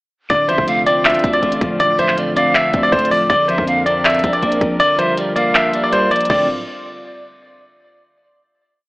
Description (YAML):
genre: hip hop, trap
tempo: 160 BPM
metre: 4/4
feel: half-time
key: D minor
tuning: A4 = 440 Hz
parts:
  - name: bright baby grand piano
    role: melody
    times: 0.3-6.5 s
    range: C5 to E5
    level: -16 LUFS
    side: equal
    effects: none
  - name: clean electric guitar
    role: accompaniment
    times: 0.3-6.5 s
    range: D3 to D4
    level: -23 LUFS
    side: left 1 dB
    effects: none
  - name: warm analog pad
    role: sustained chords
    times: 0.3-6.5 s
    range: D3 to Bb4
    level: -26 LUFS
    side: equal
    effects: chorus
  - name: distorted 808-style bass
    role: bass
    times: 0.3-6.6 s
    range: D1 to F2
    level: -27 LUFS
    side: equal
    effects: distortion
  - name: trap drum kit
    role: drums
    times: 0.3-6.4 s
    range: crash cymbal, handclaps, hi-hat, kick drum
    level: -20 LUFS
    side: equal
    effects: none
  - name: breathy bright polished pan flute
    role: second line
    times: 0.5-6.5 s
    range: D5 to F5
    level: -22 LUFS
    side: right 1 dB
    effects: digital delay
room: moderate recital hall reverb, RT60 1.7 s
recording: AM radio sound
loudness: -13 LUFS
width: side -21 dB against mid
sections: 0.3-6.3 hook; 6.3-7.8 final chord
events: kick muted 4.8-6.3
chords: 0.3 Dm7; 3.3 Bbadd9; 4.8 Gm7; 6.3 Dm7